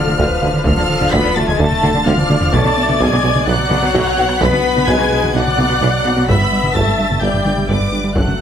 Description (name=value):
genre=cinematic, hybrid orchestral and electronic film score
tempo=128 BPM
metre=4/4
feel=straight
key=unclear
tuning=A4 = 444 Hz
part: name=warm symphonic violin section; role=melody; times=0.0-8.4 s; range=D6 to B6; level=-22 LUFS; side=left 1 dB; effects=none
part: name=warm studio violin section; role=second line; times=0.0-8.4 s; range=D5 to B5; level=-22 LUFS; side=left 1 dB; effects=none
part: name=warm symphonic viola section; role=accompaniment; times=0.0-8.4 s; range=F4 to E5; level=-22 LUFS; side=equal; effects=none
part: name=warm French horn section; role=sustained chords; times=0.0-8.4 s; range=D3 to B3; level=-22 LUFS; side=left 4 dB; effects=none
part: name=soft round pluck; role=arpeggios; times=0.0-8.3 s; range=D3 to F#4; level=-27 LUFS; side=left 4 dB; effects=none
part: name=smooth synth bass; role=riff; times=0.0-8.3 s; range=D2 to B3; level=-22 LUFS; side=right 2 dB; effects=none
part: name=detuned saw bass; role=bass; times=0.0-8.4 s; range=D1 to B1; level=-27 LUFS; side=equal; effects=none
part: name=clear baby grand piano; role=texture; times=0.0-8.4 s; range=D4 to F#5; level=-29 LUFS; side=left 3 dB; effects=none
part: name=warm symphonic cello section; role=bass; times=0.1-8.3 s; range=F#2 to D3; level=-24 LUFS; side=right 1 dB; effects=none
part: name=taiko ensemble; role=drums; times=0.1-8.4 s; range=none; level=-21 LUFS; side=equal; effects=none
part: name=clear tuba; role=bass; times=0.2-8.2 s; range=F#1 to D2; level=-23 LUFS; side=right 3 dB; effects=none
part: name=warm symphonic double bass section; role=bass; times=0.2-8.2 s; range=F#1 to D2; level=-23 LUFS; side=right 2 dB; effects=none
room=moderate scoring stage reverb, RT60 2.0 s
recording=close, detailed microphones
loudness=-12 LUFS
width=side -8 dB against mid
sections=0.0-8.4 A section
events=drum fill 2.1-2.5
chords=0.0 Dm; 2.5 Bm; 6.3 G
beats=0.19 | 0.66 1.13 1.60 2.06 | 2.53 3.00 3.47 3.94 | 4.41 4.88 5.35 5.82 | 6.28 6.75 7.22 7.69 | 8.16